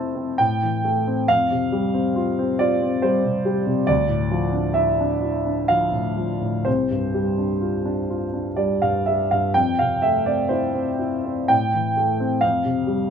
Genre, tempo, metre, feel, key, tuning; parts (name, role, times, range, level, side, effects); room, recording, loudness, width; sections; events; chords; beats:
classical, impressionist solo piano; 57-70 BPM; 3/4; rubato; F major; A4 = 440 Hz
warm grand piano; solo; 0.0-13.1 s; C2 to A6; -19 LUFS; equal
light reverb; minimal, uncompressed stereo recording; -19 LUFS; side -7 dB against mid
0.0-13.1 A section
0.4 Am7; 1.3 Fsus2; 3.9 Dmadd9; 6.7 Csus24; 9.5 Fmaj7; 11.5 Am7; 12.4 Fsus2
0.39 | 1.29 2.16 3.03 | 3.90 4.78 5.71 | 6.66 7.62 8.57 | 9.55 10.50 11.50 | 12.43